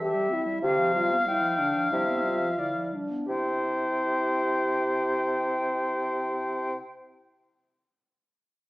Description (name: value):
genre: quick classical-period movement for wind quintet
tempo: 84-96 BPM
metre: 4/4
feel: rubato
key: C major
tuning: A4 = 435 Hz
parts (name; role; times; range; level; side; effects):
- silver concert flute; melody; 0.0-6.8 s; D5 to G5; -32 LUFS; left 2 dB; none
- clear oboe; second line; 0.0-6.8 s; C5 to F5; -29 LUFS; left 1 dB; none
- clear clarinet; accompaniment; 0.0-6.8 s; D3 to G4; -37 LUFS; right 2 dB; none
- mellow French horn; accompaniment; 0.0-6.8 s; D4 to G4; -31 LUFS; equal; none
- clear bassoon; bass; 0.6-6.8 s; C3; -31 LUFS; right 1 dB; none
room: moderate recital hall reverb, RT60 1.3 s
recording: small speaker sound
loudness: -24 LUFS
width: side -19 dB against mid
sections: 0.0-3.3 A section; 3.3-6.0 B section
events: slowing down 0.0-3.3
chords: 0.0 C; 0.6 G7/C; 3.3 C